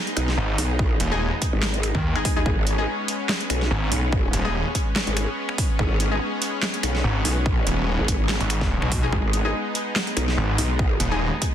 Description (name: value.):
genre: heavy wobble dubstep.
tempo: 144 BPM.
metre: 4/4.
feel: swing 55% on 16ths, half-time.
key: G# minor.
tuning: A4 = 440 Hz.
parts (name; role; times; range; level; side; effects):
lush unison pad; sustained chords; 0.0-11.5 s; G#3 to D#4; -29 LUFS; equal; chorus, sidechain pumping.
dubstep drum kit; drums; 0.1-11.5 s; finger snaps, handclaps, hi-hat, snare drum; -26 LUFS; right 1 dB; studio reverb.
growl bass; bass; 0.2-11.0 s; G#1 to D#2; -24 LUFS; equal; chorus, overdrive.
snarling distorted saw bass; bass; 0.4-11.3 s; D#1 to D#2; -23 LUFS; equal; distortion, overdrive.
electronic kick drum; drums; 0.8-11.5 s; none; -24 LUFS; equal; studio reverb.
orchestra-hit-like synth stab; stabs; 1.1-6.2, 9.0-11.2 s; G#3 to G#4; -30 LUFS; left 3 dB; built-in reverb, dub echo.
room: digital ambience.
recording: dense, heavily limited modern master.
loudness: -20 LUFS.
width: side -10 dB against mid.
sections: 0.0-11.5 A section.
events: none.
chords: 0.0 G#m.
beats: 0.38 | 0.79 1.21 1.62 2.04 | 2.46 2.88 3.29 3.71 | 4.12 4.54 4.96 5.38 | 5.79 6.21 6.62 7.04 | 7.46 7.88 8.29 8.71 | 9.12 9.54 9.96 10.38 | 10.79 11.21.